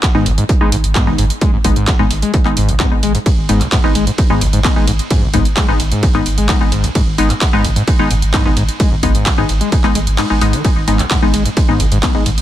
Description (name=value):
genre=driving peak-time techno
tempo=130 BPM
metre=4/4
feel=straight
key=G# minor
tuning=A4 = 439 Hz
part: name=dusty soul sampler-style drum kit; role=drums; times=0.0-12.4 s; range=hi-hat, snare drum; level=-31 LUFS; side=left 1 dB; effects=none
part: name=electronic kick drum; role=drums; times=0.0-12.1 s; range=none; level=-15 LUFS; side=equal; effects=overdrive
part: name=techno drum kit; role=drums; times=0.0-12.4 s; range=handclaps, hi-hat, ride cymbal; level=-21 LUFS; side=right 2 dB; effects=sidechain pumping on hats, sidechain pumping on cymbals
part: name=overdriven acid bass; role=riff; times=0.1-12.3 s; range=G#1 to G#3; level=-19 LUFS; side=left 1 dB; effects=distortion, lush chorus, sidechain pumping, digital delay
part: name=wavetable chord stab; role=stabs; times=0.1-12.2 s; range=G#3 to D#4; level=-19 LUFS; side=left 2 dB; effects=sidechain pumping, digital delay
part: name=saturated sub bass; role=bass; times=0.1-12.4 s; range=G#1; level=-18 LUFS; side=equal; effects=overdrive, sidechain pumping, low-pass filter
room=digital ambience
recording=none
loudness=-11 LUFS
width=side -12 dB against mid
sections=0.0-12.4 A section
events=kick drops out 10.2-10.6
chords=0.0 G#m